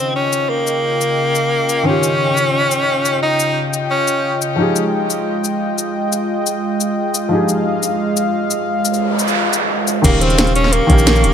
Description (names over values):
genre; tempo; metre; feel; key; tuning
liquid drum and bass; 176 BPM; 4/4; straight; unclear; A4 = 440 Hz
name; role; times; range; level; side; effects
edgy tenor saxophone; melody; 0.0-4.4, 10.0-11.3 s; Bb3 to Eb4; -17 LUFS; equal; ping-pong delay
felt-muted upright piano; accompaniment; 0.0-11.3 s; Db3 to F5; -21 LUFS; left 1 dB; ping-pong delay
warm analog pad; sustained chords; 0.0-11.3 s; Db3 to Db6; -20 LUFS; equal; chorus, sidechain pumping
drum and bass drum kit; drums; 0.3-11.3 s; crash cymbal, hi-hat, rim click, shaker, snare drum; -19 LUFS; left 2 dB; none
noise sweep; sound effects; 8.8-10.0 s; none; -20 LUFS; right 2 dB; none
long sustained 808-style bass; bass; 10.0-11.3 s; Eb1 to Bb1; -16 LUFS; equal; none
electronic kick drum; drums; 10.0-11.0 s; none; -13 LUFS; equal; none
room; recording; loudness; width
moderate scoring stage reverb, RT60 1.7 s; none; -14 LUFS; side -8 dB against mid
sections
0.0-10.0 A section; 10.0-11.3 B section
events
noise sweep 8.8-10.0; drop 10.0-11.3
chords
0.0 Eb9; 4.6 Fm9; 10.0 Eb9